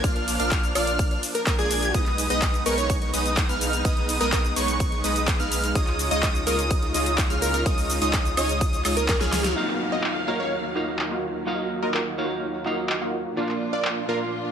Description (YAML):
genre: EDM, festival progressive house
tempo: 126 BPM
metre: 4/4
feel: straight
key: Eb minor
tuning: A4 = 440 Hz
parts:
  - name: warm symphonic string section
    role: sustained chords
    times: 0.0-14.5 s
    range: Eb2 to F5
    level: -33 LUFS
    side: equal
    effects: sidechain pumping
  - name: wide unison lead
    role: arpeggios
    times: 0.0-9.5 s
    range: Db6 to Ab6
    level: -29 LUFS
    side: right 1 dB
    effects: sidechain pumping, digital delay
  - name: supersaw stab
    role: riff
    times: 0.0-14.5 s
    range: Ab3 to Ab5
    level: -28 LUFS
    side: equal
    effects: sidechain pumping, low-pass filter, digital delay
  - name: saturated sub bass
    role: bass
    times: 0.0-9.5 s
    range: Bb1 to Db2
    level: -30 LUFS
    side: equal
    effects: sidechain pumping
  - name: big-room dance drum kit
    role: drums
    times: 0.0-13.9 s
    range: handclaps, hi-hat, ride cymbal, shaker, snare drum, woodblock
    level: -29 LUFS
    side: equal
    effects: overdrive, low-pass filter on hats, small room ambience, low-pass filter on cymbals, low-pass filter on perc, low-pass filter on snare
  - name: electronic kick drum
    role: drums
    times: 0.0-9.2 s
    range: none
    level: -24 LUFS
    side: equal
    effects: small room ambience
  - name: plucky unison lead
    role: melody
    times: 0.8-14.2 s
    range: Ab4 to Eb5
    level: -29 LUFS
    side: right 1 dB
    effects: digital delay
  - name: semi-hollow electric guitar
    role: accompaniment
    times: 9.6-14.5 s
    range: Bb2 to F5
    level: -31 LUFS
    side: right 3 dB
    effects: spring reverb, sidechain pumping, digital delay
  - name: downlifter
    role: sound effects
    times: 9.6-13.4 s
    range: none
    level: -35 LUFS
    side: left 3 dB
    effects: none
room: moderate digital room reverb, RT60 1.1 s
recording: none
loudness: -21 LUFS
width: side -8 dB against mid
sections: 0.0-9.6 A section; 9.6-14.5 B section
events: drop 0.0-9.6; drum fill 9.1-9.6; band accent 9.4; filter sweep on supersaw synth 9.6-14.5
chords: 0.0 Bb; 1.9 Abm/Cb; 5.8 Dbadd9; 9.6 Ebmadd9; 13.4 Bb